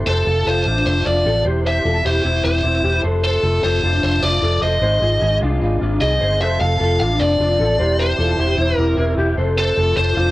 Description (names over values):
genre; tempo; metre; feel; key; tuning
indie pop; 151 BPM; 4/4; straight; F major; A4 = 440 Hz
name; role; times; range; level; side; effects
electric guitar through a small old amp; accompaniment; 0.0-10.3 s; F2 to A4; -27 LUFS; right 3 dB; cassette tape
electric guitar through a small old amp; arpeggios; 0.0-10.3 s; C4 to C5; -22 LUFS; left 2 dB; ensemble chorus, cassette tape
vintage muted fingered electric bass; bass; 0.0-10.3 s; E1 to C2; -19 LUFS; equal; none
biting lead guitar; melody; 0.1-10.3 s; A4 to F5; -19 LUFS; equal; overdrive, cassette tape
room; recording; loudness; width
light reverb; home recording on cassette; -15 LUFS; side -17 dB against mid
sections
0.1-10.3 A section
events
none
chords
0.1 F; 1.5 C/E; 3.0 F; 4.8 Ab; 6.4 F; 7.8 C/E; 9.4 F